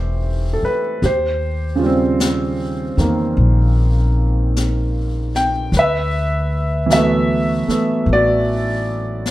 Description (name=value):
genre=jazz ballad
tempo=51 BPM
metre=4/4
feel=swing 66% on 8ths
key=unclear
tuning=A4 = 440 Hz
part: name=warm concert grand piano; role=accompaniment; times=0.0-9.3 s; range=C#3 to G5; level=-18 LUFS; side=right 1 dB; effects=none
part: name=upright bass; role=bass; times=0.0-9.3 s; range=E1 to E2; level=-18 LUFS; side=equal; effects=none
part: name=jazz brush drum kit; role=drums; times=1.0-9.3 s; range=brushed snare drum, hi-hat, snare drum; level=-26 LUFS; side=left 3 dB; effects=none
room=light reverb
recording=none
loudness=-15 LUFS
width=side -16 dB against mid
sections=0.0-9.3 A section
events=none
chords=0.0 Am9; 1.0 D#13; 5.7 D69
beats=| 1.02 2.19 3.37 4.54 | 5.72 6.89 8.07 9.24